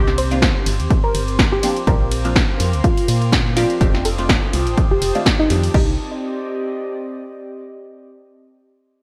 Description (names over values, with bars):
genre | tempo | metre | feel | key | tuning
deep house | 124 BPM | 4/4 | swing 55% on 16ths | C dorian | A4 = 441 Hz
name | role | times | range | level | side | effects
soft round pluck | melody | 0.0-5.9 s | Eb4 to C5 | -25 LUFS | equal | analog chorus, delay
warbly tape-like pad | sustained chords | 0.0-6.0 s | C5 to Eb6 | -35 LUFS | equal | chorus, built-in reverb, vintage 12-bit sampler grit, sidechain pumping
filtered dub chord stab | stabs | 0.0-5.9 s | Eb3 to G4 | -28 LUFS | equal | phaser, subtle chorus, sidechain pumping
organ-like FM bass | bass | 0.0-6.0 s | F1 to Bb2 | -23 LUFS | equal | sidechain pumping
airy breathy pad | texture | 0.0-7.6 s | C4 to C6 | -31 LUFS | equal | chorus, sidechain pumping
punchy analog drum machine | drums | 0.1-5.9 s | crash cymbal, hi-hat, ride cymbal, snare drum | -24 LUFS | equal | gated reverb
electronic kick drum | drums | 0.4-5.9 s | none | -20 LUFS | equal | none
room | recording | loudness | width
light reverb, digital ambience | bright 1980s-style digital production | -18 LUFS | mono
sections
0.0-5.7 A section; 5.7-7.7 B section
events
drop 0.0-5.7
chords
0.0 Cm9; 1.6 Bb69; 3.8 F13; 5.7 Cm9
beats
0.42 0.91 1.39 | 1.87 2.36 2.84 3.33 | 3.81 4.29 4.78 5.26 | 5.74 6.23 6.71 7.20